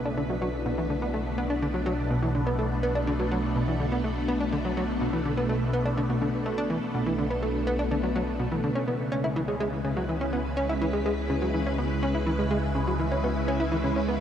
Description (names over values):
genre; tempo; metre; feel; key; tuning
ambient, sequencer-driven space music; 124 BPM; 4/4; straight; B dorian; A4 = 440 Hz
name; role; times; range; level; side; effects
phased string machine; sustained chords; 0.0-14.2 s; B2 to B4; -28 LUFS; equal; ensemble chorus, phaser
plucky analog bass; riff; 0.0-14.2 s; B2 to E4; -29 LUFS; equal; lush chorus, tape echo
warm sub bass; bass; 0.0-14.2 s; B1 to C#2; -33 LUFS; equal; none
room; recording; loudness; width
wet huge ambient reverb, RT60 7.5 s; dark, warm production; -25 LUFS; side -9 dB against mid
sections
0.0-14.2 A section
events
none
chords
0.0 Bm7; 8.8 C#m7